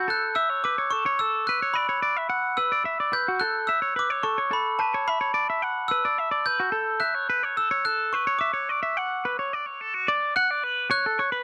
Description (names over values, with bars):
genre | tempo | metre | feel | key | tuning
rock | 72 BPM (dotted quarters) | 6/8 | straight | D major | A4 = 440 Hz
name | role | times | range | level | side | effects
glockenspiel with hard plastic mallets | melody | 0.0-11.4 s | A5 to G6 | -27 LUFS | equal | slapback echo
twangy electric guitar | arpeggios | 0.0-11.4 s | F#4 to F#5 | -29 LUFS | equal | none
room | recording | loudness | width
studio reverb | dry, close 1970s-style studio recording | -25 LUFS | mono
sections
0.0-10.1 A section; 10.1-11.4 B section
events
none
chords
0.1 A69; 1.7 Bm; 3.4 A; 5.1 Esus2; 6.7 A69; 8.4 Dmaj7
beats
| 0.07 0.91 | 1.74 2.58 | 3.41 4.24 | 5.08 5.91 | 6.75 7.58 | 8.41 9.24 | 10.08 10.91